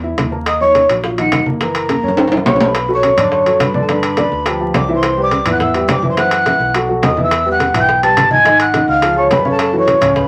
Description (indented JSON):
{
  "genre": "Afro-Cuban jazz",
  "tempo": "210 BPM",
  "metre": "4/4",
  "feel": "straight",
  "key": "B minor",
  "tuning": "A4 = 440 Hz",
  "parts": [
    { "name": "dark grand piano", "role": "accompaniment", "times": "0.0-10.2 s", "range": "C#3 to E5", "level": "-21 LUFS", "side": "equal", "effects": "none" },
    { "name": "fingered electric bass", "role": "bass", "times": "0.0-10.3 s", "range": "Gb1 to G2", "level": "-26 LUFS", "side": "equal", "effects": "none" },
    { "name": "congas", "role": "percussion", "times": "0.0-10.3 s", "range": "none", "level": "-26 LUFS", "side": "equal", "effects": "none" },
    { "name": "bongos", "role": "percussion", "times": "0.2-10.3 s", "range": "none", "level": "-25 LUFS", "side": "equal", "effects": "none" },
    { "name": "timbales", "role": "percussion", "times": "0.2-10.2 s", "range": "none", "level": "-22 LUFS", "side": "equal", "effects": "none" },
    { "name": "vibraphone with soft mallets", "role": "melody", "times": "0.5-10.3 s", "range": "F4 to A5", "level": "-19 LUFS", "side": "equal", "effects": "none" },
    { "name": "breathy jazz flute", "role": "second line", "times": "0.5-10.3 s", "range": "F5 to A6", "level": "-20 LUFS", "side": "equal", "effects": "none" }
  ],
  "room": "wet small room reverb, RT60 0.5 s",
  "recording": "vinyl crackle",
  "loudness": "-14 LUFS",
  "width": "mono",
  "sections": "0.0-2.7 A section; 2.7-10.3 B section",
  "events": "drum fill 1.9-2.7",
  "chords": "0.5 Ebm7; 1.6 Gb7; 2.7 Bm7; 3.9 G7; 5.0 Cmaj9; 6.2 Bsus4; 6.7 B5; 7.3 Em; 8.5 G#5; 9.0 C#; 9.6 F#5"
}